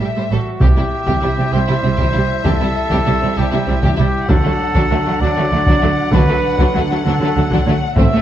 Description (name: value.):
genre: cinematic, epic orchestral film score.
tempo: 65 BPM (dotted quarters).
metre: 6/8.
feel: straight.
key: unclear.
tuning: A4 = 441 Hz.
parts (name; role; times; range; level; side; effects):
rich studio violin section; melody; 0.0-8.2 s; E5 to F#5; -25 LUFS; left 6 dB; none.
clear symphonic violin section; second line; 0.0-8.2 s; A3 to C5; -25 LUFS; left 2 dB; none.
rich symphonic viola section; accompaniment; 0.0-8.2 s; F#3 to A3; -23 LUFS; right 2 dB; none.
clear symphonic cello section; bass; 0.0-8.2 s; A2 to D3; -21 LUFS; right 3 dB; none.
warm symphonic double bass section; bass; 0.0-8.0 s; A1 to D2; -21 LUFS; right 3 dB; none.
clear trumpet; stabs; 0.3-8.2 s; F#4 to E5; -20 LUFS; right 1 dB; none.
mellow French horn section; sustained chords; 0.6-8.2 s; E3 to E4; -25 LUFS; left 1 dB; none.
taiko ensemble; drums; 0.6-8.2 s; none; -17 LUFS; equal; none.
room: moderate scoring stage reverb, RT60 1.8 s.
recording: dark, warm production.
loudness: -13 LUFS.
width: side -11 dB against mid.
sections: 0.6-8.2 A section.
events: none.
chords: 0.0 A7(no3); 0.6 C; 4.3 D.